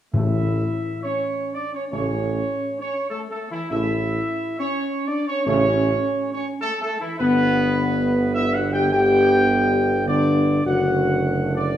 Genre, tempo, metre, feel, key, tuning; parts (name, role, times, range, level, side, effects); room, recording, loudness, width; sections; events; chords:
classical; 103 BPM; 3/4; straight; A mixolydian; A4 = 440 Hz
clear trombone section; sustained chords; 0.1-11.8 s; C#3 to B3; -26 LUFS; right 2 dB
dark French horn section; sustained chords; 0.1-11.8 s; E3 to G4; -23 LUFS; left 3 dB
warm tuba; bass; 0.1-11.8 s; F#1 to A1; -24 LUFS; right 2 dB
timpani; percussion; 0.1-1.0 s; A2; -24 LUFS; left 2 dB
dark trumpet section; melody; 0.2-11.8 s; E4 to G5; -24 LUFS; right 2 dB
wet recital hall reverb, RT60 1.4 s; dark, warm production; -19 LUFS; side -11 dB against mid
0.1-11.8 A section
0.1 A; 7.2 G; 10.7 D/F#